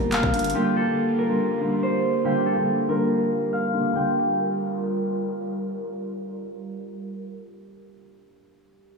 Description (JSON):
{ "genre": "hip hop, drill", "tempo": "141 BPM", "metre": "4/4", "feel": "half-time", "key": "G minor", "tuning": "A4 = 440 Hz", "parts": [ { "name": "concert harp", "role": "melody", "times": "0.0-5.5 s", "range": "G4 to G5", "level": "-25 LUFS", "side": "equal", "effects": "low-pass filter" }, { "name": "dark concert grand piano", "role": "accompaniment", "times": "0.0-9.0 s", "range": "D3 to F4", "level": "-28 LUFS", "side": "right 1 dB", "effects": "analog chorus, low-pass filter" }, { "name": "airy breathy pad", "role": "sustained chords", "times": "0.0-7.3 s", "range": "G3 to Bb4", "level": "-28 LUFS", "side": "equal", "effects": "chorus, low-pass filter" }, { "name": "growling 808-style bass", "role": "bass", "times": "0.0-0.5 s", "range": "F1 to G1", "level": "-29 LUFS", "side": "equal", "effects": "none" }, { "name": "drill drum kit", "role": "drums", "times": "0.1-0.5 s", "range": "handclaps, hi-hat, kick drum", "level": "-27 LUFS", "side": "equal", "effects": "none" } ], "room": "wet lush hall reverb, RT60 1.5 s, digital ambience", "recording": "dreamy mix soaked in reverb, studio ambience", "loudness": "-21 LUFS", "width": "side -4 dB against mid", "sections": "0.0-4.0 A section; 4.0-7.4 B section", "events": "filter sweep 0.0-4.0", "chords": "0.0 Gm7" }